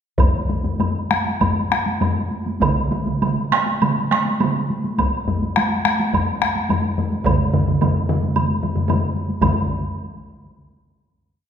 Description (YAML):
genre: japanese traditional, taiko drum ensemble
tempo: 98-121 BPM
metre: 4/4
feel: straight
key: none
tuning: none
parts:
  - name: solo taiko drums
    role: percussion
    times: 0.2-9.9 s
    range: none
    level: -21 LUFS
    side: left 4 dB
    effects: none
  - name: taiko ensemble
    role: percussion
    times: 0.2-9.7 s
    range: none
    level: -24 LUFS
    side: equal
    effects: none
  - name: taiko ensemble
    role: percussion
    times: 0.2-9.7 s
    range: none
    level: -24 LUFS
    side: equal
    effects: none
  - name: woodblock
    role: percussion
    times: 0.2-9.7 s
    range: none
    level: -27 LUFS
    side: right 3 dB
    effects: none
  - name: taiko ensemble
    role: percussion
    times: 2.6-9.9 s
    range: none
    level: -22 LUFS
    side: right 5 dB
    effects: none
room: wet recital hall reverb, RT60 1.7 s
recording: recorded in a church or concert hall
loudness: -17 LUFS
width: side -8 dB against mid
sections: 0.2-9.4 A section; 9.4-11.5 final hit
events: speeding up 0.2-11.5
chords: none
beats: | 0.19 0.80 1.41 2.02 | 2.62 3.22 3.81 4.40 | 4.99 5.57 6.14 6.70 | 7.26 7.81 8.36 8.89 | 9.42